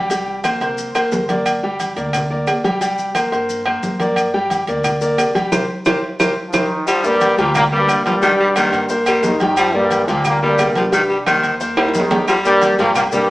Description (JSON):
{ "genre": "latin, salsa", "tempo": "178 BPM", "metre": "4/4", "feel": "straight", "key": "unclear", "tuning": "A4 = 440 Hz", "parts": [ { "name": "warm concert grand piano", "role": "accompaniment", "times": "0.0-13.3 s", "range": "G3 to G5", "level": "-19 LUFS", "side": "equal", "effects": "none" }, { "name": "upright bass", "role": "bass", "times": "0.0-13.3 s", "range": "G1 to G2", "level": "-29 LUFS", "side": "equal", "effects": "none" }, { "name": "agogo bells and timbales", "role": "percussion", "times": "0.1-13.1 s", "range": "none", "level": "-21 LUFS", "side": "right 1 dB", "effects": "none" }, { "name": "congas", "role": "percussion", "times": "0.1-13.3 s", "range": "none", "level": "-27 LUFS", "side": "equal", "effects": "none" }, { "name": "maracas", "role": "percussion", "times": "0.1-13.3 s", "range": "none", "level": "-33 LUFS", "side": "left 4 dB", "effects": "none" }, { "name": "claves", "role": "percussion", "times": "0.4-13.1 s", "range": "none", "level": "-25 LUFS", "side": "right 2 dB", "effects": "none" }, { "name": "bright trombone section", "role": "melody", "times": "6.5-13.3 s", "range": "G2 to F4", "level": "-17 LUFS", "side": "equal", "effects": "none" }, { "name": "breathy baritone saxophone", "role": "second line", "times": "6.9-13.3 s", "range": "Eb3 to G3", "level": "-20 LUFS", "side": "left 1 dB", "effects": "none" } ], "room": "wet stone room reverb, RT60 1.0 s", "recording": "band playing live in one room, small speaker sound", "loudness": "-14 LUFS", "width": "side -18 dB against mid", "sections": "0.0-6.9 A section; 6.9-13.3 B section", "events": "band accent 5.5-6.9; drum fill 6.4-6.9, 11.8-12.3", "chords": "0.1 C5; 1.5 Gm; 2.8 C5; 5.5 Cm7; 6.9 Gm7; 8.2 Cm7; 9.6 Gm7; 10.9 Cm7; 12.3 Gm", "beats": "| 0.10 0.44 0.78 1.12 | 1.46 1.80 2.14 2.48 | 2.82 3.15 3.49 3.83 | 4.17 4.51 4.85 5.19 | 5.52 5.86 6.20 6.54 | 6.88 7.21 7.55 7.89 | 8.23 8.56 8.90 9.24 | 9.58 9.92 10.25 10.59 | 10.93 11.27 11.60 11.94 | 12.28 12.62 12.95 13.29" }